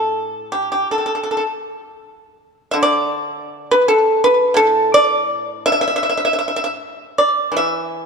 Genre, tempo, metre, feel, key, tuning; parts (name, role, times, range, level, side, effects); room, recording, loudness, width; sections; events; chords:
chinese traditional, Chinese solo plucked strings; 77-84 BPM; 2/4; rubato; A shang mode; A4 = 440 Hz
pipa; solo; 0.0-8.1 s; A2 to E5; -15 LUFS; equal; slapback echo
moderate concert hall reverb, RT60 2.3 s; dark, warm production; -15 LUFS; side -5 dB against mid
0.0-1.6 A section; 1.6-8.1 B section